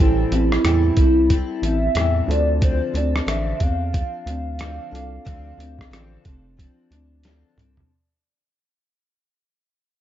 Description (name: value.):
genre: indie pop, bedroom pop.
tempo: 91 BPM.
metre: 4/4.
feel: swing 60% on 16ths.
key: unclear.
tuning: A4 = 439 Hz.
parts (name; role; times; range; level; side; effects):
hollow clarinet-like synth lead; melody; 0.0-7.3 s; E4 to F5; -23 LUFS; right 1 dB; analog chorus, ping-pong delay.
picked steel-string acoustic guitar; accompaniment; 0.0-7.9 s; A2 to A4; -28 LUFS; left 2 dB; analog chorus, vibrato effect.
reed electric piano; accompaniment; 0.0-7.9 s; D4 to D5; -34 LUFS; right 5 dB; none.
round analog bass; bass; 0.0-7.8 s; F1 to E2; -22 LUFS; equal; none.
boom bap sampler-style drum kit; drums; 0.3-7.9 s; hi-hat, kick drum, rim click, snare drum, toms; -20 LUFS; equal; none.
room: light reverb, digital ambience.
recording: dark, warm production, nothing above 7.5 kHz.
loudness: -17 LUFS.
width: side -11 dB against mid.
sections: 0.0-7.9 A section.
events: fade-out 0.0-7.9; drum fill 7.2-7.9.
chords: 0.0 Am7; 2.3 Dm7.